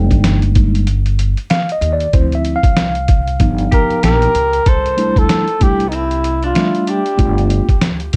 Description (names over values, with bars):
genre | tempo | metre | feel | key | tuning
hip hop, jazz-hop | 95 BPM | 4/4 | swing 60% on 16ths | C major | A4 = 440 Hz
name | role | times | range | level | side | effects
mellow tine electric piano | accompaniment | 0.0-7.7 s | F3 to G5 | -21 LUFS | equal | plate reverb
upright bass | bass | 0.0-8.1 s | F1 to Eb2 | -19 LUFS | equal | none
trip hop sampler-style drum kit | drums | 0.1-8.2 s | hi-hat, kick drum, snare drum | -17 LUFS | equal | none
breathy flugelhorn | melody | 3.7-7.5 s | Eb4 to C5 | -19 LUFS | equal | plate reverb, analog delay
clean electric guitar | second line | 3.7-7.5 s | B3 to A4 | -29 LUFS | equal | phaser, plate reverb
room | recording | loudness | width
light reverb | dark, warm production | -14 LUFS | mono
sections
0.0-4.7 A section; 4.7-8.2 B section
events
tine electric piano solo 0.0-4.7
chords
0.0 Fm11; 2.1 Dm9; 3.4 G7alt; 4.7 C69; 7.2 G7